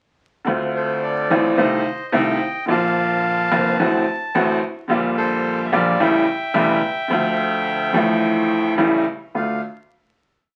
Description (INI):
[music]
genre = tango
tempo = 108 BPM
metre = 4/4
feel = rubato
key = D minor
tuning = A4 = 440 Hz
[part]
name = bright upright piano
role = accompaniment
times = 0.4-9.6 s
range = E1 to F#4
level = -20 LUFS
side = equal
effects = none
[part]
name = upright bass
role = bass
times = 0.5-9.6 s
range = E1 to D2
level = -36 LUFS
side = equal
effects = none
[part]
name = bandoneon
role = melody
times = 0.8-9.6 s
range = A4 to A5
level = -25 LUFS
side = equal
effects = none
[sound]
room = wet studio reverb, RT60 0.6 s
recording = very old 78 rpm record, vinyl crackle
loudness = -19 LUFS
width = mono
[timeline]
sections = 0.5-9.3 A section; 9.3-10.6 final chord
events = none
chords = 0.5 Dm7; 1.6 F7/C; 2.7 Bb; 3.8 D7/A; 4.9 Gm7/Bb; 6.0 A7; 7.1 Dm; 8.8 A7; 9.3 Dm